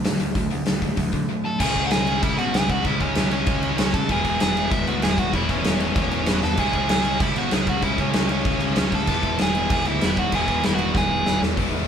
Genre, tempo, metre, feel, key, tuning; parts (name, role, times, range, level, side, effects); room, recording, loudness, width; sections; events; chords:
punk rock; 193 BPM; 4/4; straight; E mixolydian; A4 = 435 Hz
distorted electric guitar; riff; 0.0-11.9 s; E2 to C#4; -30 LUFS; right 8 dB; overdrive
sludgy distorted guitar; riff; 0.0-11.9 s; C#3 to E4; -27 LUFS; left 9 dB; overdrive
modern bright picked electric bass; bass; 0.0-11.9 s; E1 to D3; -28 LUFS; equal
big rock drum kit; drums; 0.0-11.6 s; crash cymbal, hi-hat, kick drum, snare drum; -23 LUFS; equal
dark smooth lead guitar; melody; 1.5-11.4 s; C#4 to A5; -25 LUFS; right 2 dB; overdrive
light reverb; band playing live in one room; -19 LUFS; side -8 dB against mid
0.0-1.6 A section; 1.6-11.6 B section
drum fill 6.4, 10.9-11.6
0.0 D; 1.6 C#m; 4.1 E; 6.6 C#m; 9.1 E